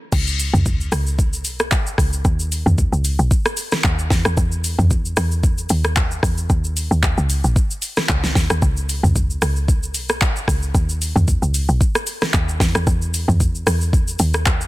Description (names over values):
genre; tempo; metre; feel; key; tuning
amapiano; 113 BPM; 4/4; swing 55% on 16ths; unclear; A4 = 441 Hz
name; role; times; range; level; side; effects
woody log drum bass; bass; 0.1-14.7 s; A#1 to E2; -19 LUFS; equal; none
smooth R&B drum kit; drums; 0.1-14.7 s; crash cymbal, handclaps, hi-hat, kick drum, rim click, shaker, snare drum, toms; -18 LUFS; equal; none
room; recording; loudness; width
little or no reverb; dense, heavily limited modern master; -16 LUFS; side -18 dB against mid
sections
0.1-14.7 A section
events
drop 0.1-14.7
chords
none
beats
| 0.12 0.66 1.19 1.72 | 2.25 2.78 3.31 3.84 | 4.37 4.90 5.43 5.97 | 6.50 7.03 7.56 8.09 | 8.62 9.15 9.68 10.21 | 10.74 11.28 11.81 12.34 | 12.87 13.40 13.93 14.46